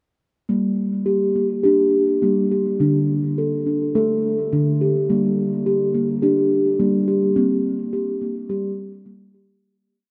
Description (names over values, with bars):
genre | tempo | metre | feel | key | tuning
world meditative | 105 BPM | 4/4 | swing 53% on 16ths | G minor | A4 = 440 Hz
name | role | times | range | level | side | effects
steel tongue drum | solo | 0.5-9.6 s | D3 to A4 | -20 LUFS | equal | delay
room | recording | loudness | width
wet huge ambient reverb, RT60 7.6 s | dreamy mix soaked in reverb | -20 LUFS | mono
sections
0.5-9.6 A section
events
fade-out 7.4-9.6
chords
0.5 Gm; 2.8 D5; 5.1 Gm; 7.4 C5; 8.5 Gm